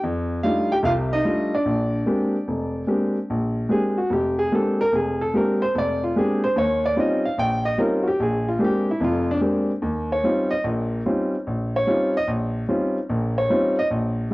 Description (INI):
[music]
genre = solo jazz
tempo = 147 BPM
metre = 4/4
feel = swing 67% on 8ths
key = Bb mixolydian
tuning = A4 = 436 Hz
[part]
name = warm grand piano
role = solo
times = 0.0-14.3 s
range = F1 to G5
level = -20 LUFS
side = equal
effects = none
[sound]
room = moderate spring reverb, RT60 1.6 s, small room reverb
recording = home recording on cassette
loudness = -20 LUFS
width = side -20 dB against mid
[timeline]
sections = 0.0-3.3 A section; 3.3-14.3 B section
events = grand piano solo 3.3-14.3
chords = 0.0 F13; 1.7 Bb13; 6.6 Eb13; 8.2 Bb13; 9.8 Eb13